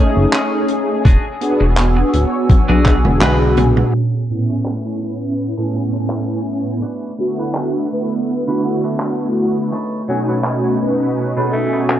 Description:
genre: vaporwave.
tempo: 83 BPM.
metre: 4/4.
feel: swing 54% on 16ths.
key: A major.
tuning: A4 = 440 Hz.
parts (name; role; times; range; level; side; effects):
mellow synth brass; accompaniment; 0.0-12.0 s; A2 to G#5; -18 LUFS; equal; ensemble chorus, analog delay.
warbly tape-like pad; sustained chords; 0.0-12.0 s; A3 to E6; -26 LUFS; equal; chorus, built-in reverb.
semi-hollow electric guitar; riff; 0.0-12.0 s; A3 to B4; -28 LUFS; right 2 dB; lush chorus, vintage 12-bit sampler grit, low-pass filter, analog delay.
chorused synth bass; bass; 0.2-3.8 s; D1 to B1; -16 LUFS; equal; none.
open jazz drum kit; drums; 0.3-12.0 s; handclaps, hi-hat, toms; -18 LUFS; right 1 dB; none.
electronic kick drum; drums; 1.1-3.0 s; none; -12 LUFS; equal; none.
raspy tenor saxophone; melody; 10.1-11.9 s; F#3 to A3; -25 LUFS; equal; vintage 12-bit sampler grit, tape echo.
room: light reverb, small room ambience.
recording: dark, warm production, cassette tape, low-pass filter, nothing above 10.7 kHz.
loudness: -14 LUFS.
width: side -11 dB against mid.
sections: 0.0-3.9 A section; 3.9-12.0 B section.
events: drum fill 2.5-3.9; band accent 3.2-3.6; filter sweep on ambient pad 3.9-12.0; filter sweep 3.9-12.0.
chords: 0.0 B13 (rootless); 1.1 E9; 3.9 Amaj7; 6.8 D69; 9.7 B13.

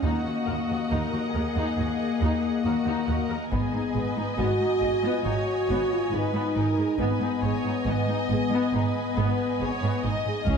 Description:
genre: cinematic, epic orchestral film score.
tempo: 69 BPM.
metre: 4/4.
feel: straight.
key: unclear.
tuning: A4 = 441 Hz.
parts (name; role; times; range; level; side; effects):
warm symphonic violin section; melody; 0.0-10.6 s; Gb5 to Ab5; -38 LUFS; left 3 dB; none.
clear symphonic violin section; second line; 0.0-10.6 s; Gb4 to Eb5; -34 LUFS; left 3 dB; none.
rich symphonic viola section; accompaniment; 0.0-10.6 s; Cb4 to F5; -32 LUFS; equal; none.
mellow French horn section; sustained chords; 0.0-10.6 s; Bb3 to Gb4; -27 LUFS; left 3 dB; none.
rich symphonic cello section; bass; 0.0-10.5 s; Db2 to Ab2; -32 LUFS; right 3 dB; none.
rich symphonic double bass section; bass; 0.0-10.6 s; Ab1 to Eb2; -31 LUFS; right 4 dB; none.
taiko ensemble; drums; 3.5-5.2, 10.5-10.6 s; none; -29 LUFS; equal; none.
room: moderate concert hall reverb, RT60 2.5 s.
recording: dark, warm production.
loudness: -23 LUFS.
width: side -6 dB against mid.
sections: 0.0-10.6 A section.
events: none.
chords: 0.0 Ebm; 3.5 Abm.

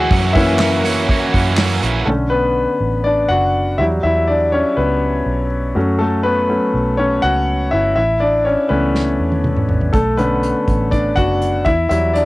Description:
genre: piano-driven pop.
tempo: 122 BPM.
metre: 4/4.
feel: straight.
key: B minor.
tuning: A4 = 440 Hz.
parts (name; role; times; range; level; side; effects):
bright concert grand piano; accompaniment; 0.0-12.3 s; D3 to G#5; -16 LUFS; left 1 dB; cassette tape.
warm studio string section; sustained chords; 0.0-2.1 s; E3 to F#4; -29 LUFS; right 1 dB; none.
overdriven electric guitar; riff; 0.0-2.1 s; F#2 to G#4; -19 LUFS; right 4 dB; cassette tape.
vintage muted fingered electric bass; bass; 0.0-12.3 s; F#1 to F#2; -20 LUFS; right 1 dB; none.
unplugged drum kit; drums; 0.1-1.9, 8.9-12.3 s; handclaps, hi-hat, kick drum, snare drum, toms; -19 LUFS; equal; cassette tape.
room: light reverb.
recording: home recording on cassette.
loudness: -14 LUFS.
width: side -19 dB against mid.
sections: 0.0-2.1 A section; 2.1-12.3 B section.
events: grand piano solo 0.0-2.1, 2.1-12.3; drum fill 9.0-9.9.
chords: 0.1 F#7; 2.1 Bm7; 3.8 Emadd9; 5.8 F#m; 8.0 A; 9.9 Bm7; 11.7 Emadd9.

